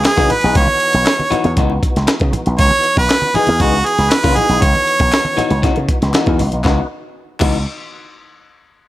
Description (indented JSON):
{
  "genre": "funk",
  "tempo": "118 BPM",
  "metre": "4/4",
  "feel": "straight",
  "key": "C# minor",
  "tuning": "A4 = 438 Hz",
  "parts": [
    { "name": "bright harmonica", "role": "melody", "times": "0.0-5.6 s", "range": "F#4 to C#5", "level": "-15 LUFS", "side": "right 2 dB", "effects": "none" },
    { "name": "percussive tonewheel organ", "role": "sustained chords", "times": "0.0-6.9 s", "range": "E3 to F#4", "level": "-28 LUFS", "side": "left 1 dB", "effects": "slow rotary speaker, overdrive, chorus vibrato" },
    { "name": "slap bass with an envelope filter", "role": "bass", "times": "0.0-7.6 s", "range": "B1 to C#3", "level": "-17 LUFS", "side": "equal", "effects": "none" },
    { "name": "breakbeat sampler-style drum kit", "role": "drums", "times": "0.0-7.5 s", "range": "crash cymbal, hi-hat, kick drum, snare drum", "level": "-17 LUFS", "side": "equal", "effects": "none" },
    { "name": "congas", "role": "percussion", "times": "0.0-7.6 s", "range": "none", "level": "-26 LUFS", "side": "right 2 dB", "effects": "none" },
    { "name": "group handclap", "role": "percussion", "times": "0.0-7.6 s", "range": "none", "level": "-29 LUFS", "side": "left 3 dB", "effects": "none" },
    { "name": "electric guitar at the edge of break-up", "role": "accompaniment", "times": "0.2-7.6 s", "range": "E3 to G#4", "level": "-21 LUFS", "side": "left 4 dB", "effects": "none" }
  ],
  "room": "light reverb",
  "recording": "none",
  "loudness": "-12 LUFS",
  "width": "side -15 dB against mid",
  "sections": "0.0-6.6 A section; 6.6-8.7 B section",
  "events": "none",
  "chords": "0.0 C#m11",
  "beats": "0.05 | 0.56 1.07 1.58 2.08 | 2.59 3.10 3.60 4.11 | 4.62 5.12 5.63 6.14 | 6.65 7.15"
}